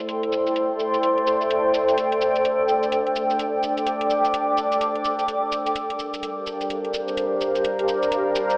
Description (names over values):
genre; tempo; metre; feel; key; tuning
bass house; 127 BPM; 4/4; swing 61% on 16ths; A phrygian; A4 = 440 Hz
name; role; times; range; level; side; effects
sweeping resonant pad; sustained chords; 0.0-8.6 s; G3 to C5; -24 LUFS; equal; chorus
electronic hi-hat and shaker; drums; 0.0-8.6 s; none; -34 LUFS; equal; low-pass filter on hats, low-pass filter on perc, low-pass filter on snare, low-pass filter on toms
granular cloud pad; texture; 0.0-8.6 s; G4 to D6; -23 LUFS; equal; built-in reverb
room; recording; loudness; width
wet lush hall reverb, RT60 2.0 s; telephone sound; -20 LUFS; side -27 dB against mid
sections
0.0-8.6 A section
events
none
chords
0.0 Am; 5.8 Gm